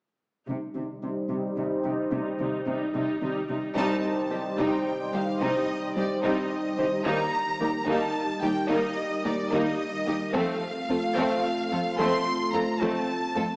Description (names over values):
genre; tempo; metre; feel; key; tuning
cinematic, hybrid orchestral and electronic film score; 73 BPM (dotted quarters); 6/8; straight; C dorian; A4 = 440 Hz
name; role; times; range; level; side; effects
warm symphonic viola section; accompaniment; 0.5-13.4 s; G3 to Eb4; -34 LUFS; equal; low-pass filter
dark analog pad; sustained chords; 0.5-13.6 s; G3 to C5; -33 LUFS; equal; chorus, low-pass filter
soft round pluck; arpeggios; 0.5-13.5 s; C3 to C4; -40 LUFS; equal; chorus, low-pass filter, digital delay
dark studio cello section; bass; 0.5-13.4 s; C2 to C3; -37 LUFS; equal; none
rich chamber violin section; melody; 3.8-13.6 s; D5 to C6; -34 LUFS; equal; low-pass filter
warm symphonic violin section; second line; 3.8-13.4 s; A3 to C5; -34 LUFS; equal; none
room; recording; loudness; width
wet scoring stage reverb, RT60 1.9 s; small speaker sound; -27 LUFS; mono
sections
0.5-3.8 A section; 3.8-13.6 B section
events
filter sweep 0.5-3.8; band accent 3.8-4.3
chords
0.5 Cm; 7.1 Eb; 10.3 F